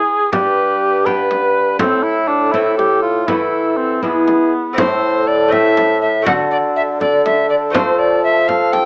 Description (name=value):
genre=classical, renaissance-style consort dance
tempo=81 BPM (dotted quarters)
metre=6/8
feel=straight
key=A minor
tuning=A4 = 439 Hz
part: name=alto recorder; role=melody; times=0.0-8.9 s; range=G#4 to G5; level=-18 LUFS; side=left 1 dB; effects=none
part: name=dark cor anglais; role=second line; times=0.0-8.9 s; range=B3 to B4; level=-17 LUFS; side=equal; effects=none
part: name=lute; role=accompaniment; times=0.0-8.9 s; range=G2 to G#4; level=-21 LUFS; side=equal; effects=none
part: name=warm bassoon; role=bass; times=0.3-8.9 s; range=G2 to F3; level=-19 LUFS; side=equal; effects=none
part: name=frame drum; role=percussion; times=0.3-8.9 s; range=none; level=-21 LUFS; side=equal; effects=none
room=light reverb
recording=small speaker sound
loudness=-12 LUFS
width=side -28 dB against mid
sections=0.0-4.8 A section; 4.8-8.9 A section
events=none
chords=0.3 G; 1.8 Am; 3.3 Esus4; 4.0 E; 4.8 Am; 6.3 D; 7.7 F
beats=| 0.32 1.06 | 1.80 2.54 | 3.28 4.03 | 4.78 5.52 | 6.26 7.00 | 7.74 8.48